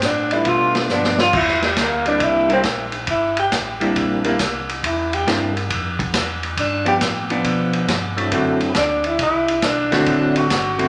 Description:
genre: soul jazz organ trio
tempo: 138 BPM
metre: 4/4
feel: swing 66% on 8ths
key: unclear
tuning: A4 = 443 Hz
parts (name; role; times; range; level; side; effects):
- mellow tenor saxophone; melody; 0.0-10.9 s; G3 to G4; -22 LUFS; equal; none
- mellow tonewheel organ; bass; 0.0-10.9 s; G1 to B2; -32 LUFS; equal; slow rotary speaker
- vintage drum kit; drums; 0.0-10.9 s; crash cymbal, hi-hat, kick drum, ride cymbal, snare drum; -24 LUFS; equal; none
- percussive tonewheel organ; melody; 0.3-5.5, 8.2-10.5 s; F#3 to F4; -27 LUFS; equal; slow rotary speaker, chorus vibrato
- archtop guitar, miked and amplified; accompaniment; 0.9-10.9 s; D3 to F#4; -25 LUFS; equal; none
room: wet large studio reverb, RT60 1.3 s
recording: none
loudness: -19 LUFS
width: mono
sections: 0.0-10.9 A section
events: tenor saxophone solo 0.0-10.9; drum fill 0.9-1.3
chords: 0.0 G7; 1.3 C7; 6.6 G7; 8.3 D7

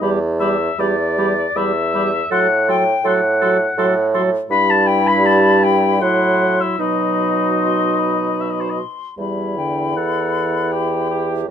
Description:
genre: classical, slow romantic movement for wind quintet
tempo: 74-83 BPM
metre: 3/4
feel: rubato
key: E minor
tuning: A4 = 440 Hz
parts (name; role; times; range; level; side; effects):
- hollow concert flute; melody; 0.0-11.2 s; B5 to C6; -25 LUFS; left 13 dB; none
- clear clarinet; accompaniment; 0.0-11.5 s; D#4 to A4; -24 LUFS; right 9 dB; none
- warm French horn; accompaniment; 0.0-11.5 s; D3 to G3; -23 LUFS; equal; none
- warm bassoon; bass; 0.0-11.5 s; E2 to B2; -19 LUFS; right 3 dB; none
- warm oboe; second line; 0.4-11.5 s; C5 to B5; -19 LUFS; left 5 dB; none
room: little or no reverb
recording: close, detailed microphones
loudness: -15 LUFS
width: side -8 dB against mid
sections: 0.0-11.5 A section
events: none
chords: 0.0 Em; 2.3 F#dim/A; 4.5 Em/G; 6.0 F#m7b5/A; 6.8 B; 9.2 Em

